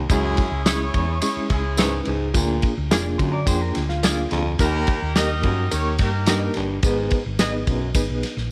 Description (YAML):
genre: uptempo 1960s-style soul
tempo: 107 BPM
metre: 4/4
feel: straight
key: G# minor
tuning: A4 = 435 Hz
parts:
  - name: growling baritone saxophone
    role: riff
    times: 0.0-7.9 s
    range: D#2 to A#2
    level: -31 LUFS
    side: equal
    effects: none
  - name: hollow-body short-scale fingered electric bass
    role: bass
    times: 0.0-8.5 s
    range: E#1 to D3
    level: -27 LUFS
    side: equal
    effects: none
  - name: clear horn section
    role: second line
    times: 0.1-6.5 s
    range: G#3 to D#5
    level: -30 LUFS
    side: equal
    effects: none
  - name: barky reed electric piano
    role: accompaniment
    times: 0.1-8.3 s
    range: G#3 to B#5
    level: -29 LUFS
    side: equal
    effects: overdrive, tremolo
  - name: warm soul drum kit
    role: drums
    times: 0.1-8.4 s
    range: kick drum, ride cymbal, snare drum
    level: -26 LUFS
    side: equal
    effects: none
  - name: tambourine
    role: percussion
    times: 0.1-8.1 s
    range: none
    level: -36 LUFS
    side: equal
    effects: none
  - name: electric guitar through a small old amp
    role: stabs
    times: 0.7-7.5 s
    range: E4 to D#5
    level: -32 LUFS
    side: equal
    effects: tremolo, slapback echo
  - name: electric guitar through a small old amp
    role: riff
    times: 3.3-4.6 s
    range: E#4 to D5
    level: -34 LUFS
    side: equal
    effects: spring reverb
room: light reverb, studio reverb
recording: none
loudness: -22 LUFS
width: mono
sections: 0.0-8.5 A section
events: reed electric piano fill 2.9-4.6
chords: 0.1 C#m; 2.3 A#7; 4.6 D#; 6.8 G#m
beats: | 0.10 0.66 1.22 1.78 | 2.35 2.91 3.47 4.03 | 4.59 5.15 5.71 6.27 | 6.83 7.39 7.95